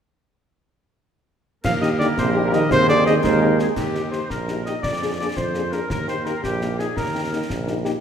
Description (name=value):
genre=military-style march for wind band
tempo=113 BPM (dotted quarters)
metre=6/8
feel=straight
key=Eb major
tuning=A4 = 440 Hz
part: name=mellow cornet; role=melody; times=1.6-7.5 s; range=G4 to F5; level=-25 LUFS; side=equal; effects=none
part: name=clear woodwind section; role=second line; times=1.6-7.5 s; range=G4 to Eb5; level=-28 LUFS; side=equal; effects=none
part: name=dark euphonium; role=second line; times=1.6-3.7 s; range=Bb2 to Ab3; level=-24 LUFS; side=right 3 dB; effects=none
part: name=warm trombone section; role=sustained chords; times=1.6-3.6 s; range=G3 to C4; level=-29 LUFS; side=right 1 dB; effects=none
part: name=warm tuba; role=bass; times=1.6-7.9 s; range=Bb1 to F2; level=-24 LUFS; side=right 2 dB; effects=none
part: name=concert snare drum, clash cymbals and concert bass drum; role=drums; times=1.6-8.0 s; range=none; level=-30 LUFS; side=left 1 dB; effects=none
part: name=warm French horn section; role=accompaniment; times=1.8-7.9 s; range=Bb3 to Ab4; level=-26 LUFS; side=left 4 dB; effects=none
room=moderate concert hall reverb, RT60 1.7 s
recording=minimal, uncompressed stereo recording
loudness=-19 LUFS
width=side -8 dB against mid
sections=1.6-3.8 A section; 3.8-8.0 B section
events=none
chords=1.6 Eb; 2.7 Ab/Eb; 3.8 Eb; 4.8 Bb7/F; 5.9 Eb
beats=| 1.65 2.18 | 2.71 3.24 | 3.77 4.30 | 4.84 5.37 | 5.90 6.43 | 6.97 7.50